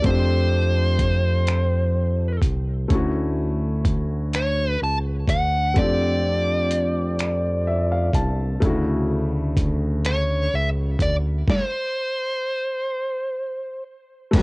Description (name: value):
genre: slow six-eight R&B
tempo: 42 BPM (dotted quarters)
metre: 6/8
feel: straight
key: D major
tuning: A4 = 440 Hz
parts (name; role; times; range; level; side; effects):
- dark smooth lead guitar; melody; 0.0-13.8 s; C5 to A5; -24 LUFS; equal; overdrive
- warm baby grand piano; accompaniment; 0.0-14.4 s; C#3 to A5; -27 LUFS; left 2 dB; none
- smooth synth bass; bass; 0.0-14.4 s; G1 to F2; -22 LUFS; equal; none
- dusty soul sampler-style drum kit; drums; 0.0-14.4 s; crash cymbal, finger snaps, hi-hat, kick drum, snare drum; -22 LUFS; equal; overdrive
- hollow soft pad; sustained chords; 14.3-14.4 s; F#3 to B4; -27 LUFS; right 1 dB; ensemble chorus
room: little or no reverb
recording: home recording on cassette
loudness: -20 LUFS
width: side -27 dB against mid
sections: 0.0-14.3 A section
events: grand piano fill 7.2-8.6; stop 11.5-14.3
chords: 0.0 F6; 2.9 Dmaj7; 5.8 F6; 8.6 Dmaj7; 11.5 N.C.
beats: | 0.05 1.48 | 2.90 4.33 | 5.76 7.19 | 8.62 10.05 | 11.48 12.90 | 14.33